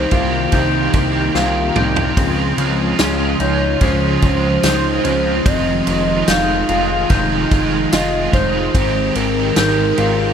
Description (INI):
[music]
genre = dream pop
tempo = 73 BPM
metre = 4/4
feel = straight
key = Db lydian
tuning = A4 = 442 Hz
[part]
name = warbly nostalgic lead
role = melody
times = 0.0-10.3 s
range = Bb4 to F5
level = -22 LUFS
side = equal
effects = chorus, ping-pong delay
[part]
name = cranked stack guitar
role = accompaniment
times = 0.0-10.3 s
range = F2 to G4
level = -22 LUFS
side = right 5 dB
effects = overdrive, tremolo, ensemble chorus
[part]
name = string machine, violins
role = sustained chords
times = 0.0-10.3 s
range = Db3 to C5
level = -22 LUFS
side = equal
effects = ensemble chorus
[part]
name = mellow electric guitar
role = arpeggios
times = 0.0-10.3 s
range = C4 to F4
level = -20 LUFS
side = left 3 dB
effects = wide subtle chorus, ping-pong delay
[part]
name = fat analog bass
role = bass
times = 0.0-10.3 s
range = F1 to Db2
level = -21 LUFS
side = equal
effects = none
[part]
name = vintage drum kit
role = drums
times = 0.1-10.2 s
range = kick drum, ride cymbal, snare drum, tambourine, toms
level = -20 LUFS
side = equal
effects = none
[sound]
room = moderate lush hall reverb, RT60 3.2 s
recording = bright 1980s-style digital production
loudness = -14 LUFS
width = side -8 dB against mid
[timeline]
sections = 0.0-10.3 A section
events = drum fill 1.3-2.2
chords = 0.0 Cm7; 2.2 Dbmaj7; 5.5 Fm7; 8.7 Abmaj7